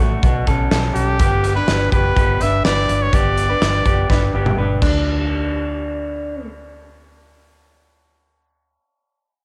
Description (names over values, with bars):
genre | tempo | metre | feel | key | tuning
jangly indie pop | 124 BPM | 4/4 | straight | unclear | A4 = 440 Hz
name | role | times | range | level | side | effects
electric guitar through a small old amp | arpeggios | 0.0-6.5 s | A3 to B4 | -25 LUFS | equal | none
vintage muted fingered electric bass | bass | 0.0-8.8 s | F#1 to D2 | -24 LUFS | equal | none
loose indie drum kit | drums | 0.2-4.9 s | crash cymbal, hi-hat, kick drum, snare drum, toms | -22 LUFS | equal | cassette tape
clear trumpet | melody | 0.9-4.6 s | G4 to E5 | -24 LUFS | equal | cassette tape
room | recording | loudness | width
little or no reverb | home recording on cassette | -18 LUFS | mono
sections
0.0-5.1 A section; 5.1-8.9 B section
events
drum fill 4.1-5.1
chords
0.0 Bsus2; 1.2 G; 4.8 N.C.